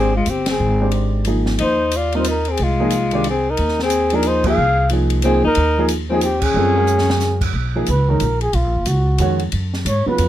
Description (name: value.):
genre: modal jazz.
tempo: 182 BPM.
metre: 3/4.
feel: swing 62% on 8ths.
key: unclear.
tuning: A4 = 439 Hz.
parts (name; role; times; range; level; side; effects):
breathy trumpet; melody; 0.0-10.3 s; F4 to F5; -20 LUFS; equal; none.
warm alto saxophone; second line; 0.0-7.4 s; Ab3 to Ab4; -22 LUFS; left 5 dB; none.
dark baby grand piano; accompaniment; 0.0-10.3 s; C#3 to C5; -21 LUFS; right 2 dB; none.
upright bass; bass; 0.0-10.3 s; F#1 to G#2; -20 LUFS; equal; none.
open jazz drum kit; drums; 0.3-10.3 s; crash cymbal, hi-hat, kick drum, ride cymbal, snare drum; -27 LUFS; equal; none.
room: little or no reverb.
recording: close, detailed microphones.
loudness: -15 LUFS.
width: side -12 dB against mid.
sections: 0.0-7.5 A section; 7.5-10.3 B section.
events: band accent 0.4, 4.4, 6.4; drum fill 6.9-7.2; trumpet solo 7.5-10.3.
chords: 0.0 Ab6; 6.6 Gbadd9; 7.5 Bmaj13.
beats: 0.27 | 0.60 0.93 1.26 | 1.59 1.93 2.26 | 2.59 2.92 3.25 | 3.58 3.91 4.24 | 4.58 4.91 5.24 | 5.57 5.90 6.23 | 6.56 6.89 7.22 | 7.55 7.88 8.21 | 8.54 8.87 9.20 | 9.53 9.86 10.19.